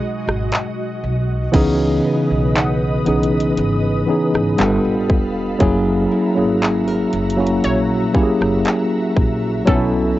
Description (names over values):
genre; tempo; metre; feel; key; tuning
contemporary R&B; 59 BPM; 4/4; straight; C# minor; A4 = 441 Hz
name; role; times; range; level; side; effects
mellow tine electric piano; accompaniment; 0.0-10.2 s; E3 to A4; -17 LUFS; equal; medium stereo tremolo
ethereal airy pad; sustained chords; 0.0-10.2 s; G#3 to D#6; -27 LUFS; equal; ensemble chorus, built-in reverb
nylon-string guitar; arpeggios; 0.0-10.2 s; B2 to A#4; -26 LUFS; right 2 dB; tape echo
upright bass; bass; 0.3-10.1 s; E1 to C#2; -23 LUFS; equal; none
trap drum kit; drums; 0.3-9.9 s; crash cymbal, handclaps, hi-hat, kick drum, rim click; -18 LUFS; equal; none
glassy wavetable pluck; texture; 2.6-10.2 s; A4 to F#5; -28 LUFS; equal; chorus, tape echo
room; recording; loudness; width
light reverb; worn, warbling old tape, cassette tape, warbly pitch drift, nothing above 7.8 kHz; -15 LUFS; side -15 dB against mid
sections
0.0-1.5 A section; 1.5-10.2 A section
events
break 0.0-1.5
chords
0.0 G#m7; 1.5 C#m9; 4.6 G9; 5.6 F#7; 9.7 B7sus4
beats
0.52 | 1.54 2.55 3.57 4.59 | 5.61 6.62 7.64 8.66 | 9.67